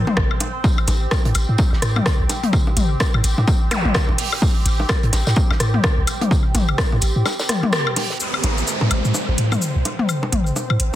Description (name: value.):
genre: minimal techno.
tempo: 127 BPM.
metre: 4/4.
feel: swing 59% on 16ths.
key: A minor.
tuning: A4 = 436 Hz.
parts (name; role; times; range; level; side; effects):
punchy sub bass; bass; 0.0-10.9 s; A1 to A2; -19 LUFS; equal; sidechain pumping.
bubbling stepped-filter texture; texture; 0.0-11.0 s; C4 to C5; -30 LUFS; right 1 dB; chorus, built-in reverb, sidechain pumping.
electronic toms, bongos and woodblock; percussion; 0.1-10.8 s; none; -23 LUFS; left 3 dB; tape echo.
electronic kick drum; drums; 0.2-6.9 s; none; -19 LUFS; equal; overdrive.
house drum kit; drums; 0.2-10.9 s; hi-hat, rim click, shaker; -24 LUFS; equal; overdrive.
warm soul drum kit; drums; 0.6-10.9 s; hi-hat, snare drum, tambourine; -29 LUFS; right 1 dB; sidechain pumping on hats, high-pass filter on hats, low-pass filter on hats, high-pass filter on snare, low-pass filter on snare, sidechain pumping on perc, high-pass filter on perc, low-pass filter on perc, high-pass filter on room, low-pass filter on room.
zap and downlifter; sound effects; 3.7-3.9, 8.2-11.0 s; none; -26 LUFS; right 2 dB; none.
room: light reverb.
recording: dense, heavily limited modern master.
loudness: -16 LUFS.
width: side -13 dB against mid.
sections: 0.0-8.2 A section; 8.2-11.0 B section.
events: band accent 7.7.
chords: 0.0 Am.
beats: 0.17 | 0.64 1.11 1.59 2.06 | 2.53 3.00 3.48 3.95 | 4.42 4.89 5.37 5.84 | 6.31 6.78 7.25 7.73 | 8.20 8.67 9.14 9.62 | 10.09 10.56.